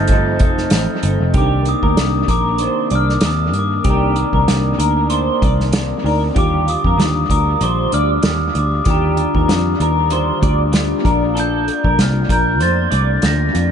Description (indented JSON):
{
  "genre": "indie pop, bedroom pop",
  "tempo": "96 BPM",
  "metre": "4/4",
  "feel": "swing 55% on 16ths",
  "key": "unclear",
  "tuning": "A4 = 441 Hz",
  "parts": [
    { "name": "glockenspiel with rubber mallets", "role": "melody", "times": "0.0-13.7 s", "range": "Bb5 to Bb6", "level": "-22 LUFS", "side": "left 1 dB", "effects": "wide subtle chorus, dub echo" },
    { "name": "electric guitar through a small old amp", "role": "accompaniment", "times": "0.0-13.7 s", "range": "Bb2 to A4", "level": "-22 LUFS", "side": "left 4 dB", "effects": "lush chorus, vibrato effect, dub echo" },
    { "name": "warbly lo-fi synth keys", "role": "accompaniment", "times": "0.0-13.7 s", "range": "D3 to F5", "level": "-26 LUFS", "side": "right 5 dB", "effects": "chorus, dub echo" },
    { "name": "warm analog pad", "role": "sustained chords", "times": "0.0-1.3 s", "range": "C3 to Eb4", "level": "-27 LUFS", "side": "equal", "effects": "chorus, tremolo" },
    { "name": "vintage muted picked electric bass", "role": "bass", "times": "0.0-13.7 s", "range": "F1 to G2", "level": "-18 LUFS", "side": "equal", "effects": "none" },
    { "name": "unplugged drum kit", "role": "drums", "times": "0.1-13.7 s", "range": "hi-hat, kick drum, snare drum", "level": "-19 LUFS", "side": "equal", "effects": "dub echo" },
    { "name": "tambourine", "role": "percussion", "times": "0.7-0.9 s", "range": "none", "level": "-34 LUFS", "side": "left 10 dB", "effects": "none" },
    { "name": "electric guitar through a small old amp", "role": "second line", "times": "1.3-13.1 s", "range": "G4 to D5", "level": "-22 LUFS", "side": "right 1 dB", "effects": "analog chorus, dub echo" }
  ],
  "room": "little or no reverb",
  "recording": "echo-heavy mix, nothing above 10.9 kHz",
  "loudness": "-13 LUFS",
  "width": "side -8 dB against mid",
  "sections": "0.0-1.3 A section; 1.3-13.7 B section",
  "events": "none",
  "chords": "0.0 F7; 1.3 Cm9; 6.4 Ebmaj9; 11.0 Bbmaj7",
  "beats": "0.09 0.72 | 1.34 1.97 2.60 3.22 | 3.85 4.48 5.10 5.73 | 6.36 6.98 7.61 8.23 | 8.86 9.48 10.11 10.73 | 11.36 11.98 12.61 13.23"
}